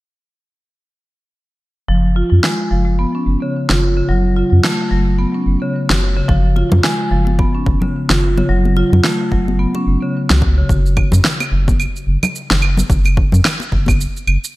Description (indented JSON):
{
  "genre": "organic downtempo",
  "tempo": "109 BPM",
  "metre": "4/4",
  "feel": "swing 58% on 16ths",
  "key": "F# harmonic minor",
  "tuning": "A4 = 440 Hz",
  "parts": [
    { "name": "marimba with medium hard mallets", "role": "arpeggios", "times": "1.9-10.7 s", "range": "C#3 to F#4", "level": "-18 LUFS", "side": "equal", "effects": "low-pass filter, digital delay" },
    { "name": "round analog bass", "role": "bass", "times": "1.9-14.4 s", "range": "F#1 to F#2", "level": "-14 LUFS", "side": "equal", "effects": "none" },
    { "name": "electronic snare drum, shaker and claves", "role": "drums", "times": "2.4-14.5 s", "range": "none", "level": "-19 LUFS", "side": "right 1 dB", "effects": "overdrive, studio reverb" },
    { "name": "electronic kick drum", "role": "drums", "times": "6.3-14.0 s", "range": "none", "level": "-17 LUFS", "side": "equal", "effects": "overdrive, studio reverb" },
    { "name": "congas", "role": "percussion", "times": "6.6-14.0 s", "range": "none", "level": "-22 LUFS", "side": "left 1 dB", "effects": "none" }
  ],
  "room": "light reverb, studio reverb",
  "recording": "bright 1980s-style digital production",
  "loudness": "-13 LUFS",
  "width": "side -18 dB against mid",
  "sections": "1.9-10.7 A section; 10.7-14.6 B section",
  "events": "none",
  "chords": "1.9 C#/F#; 4.1 N.C.; 6.3 C#/F#; 8.5 F#m; 10.7 N.C."
}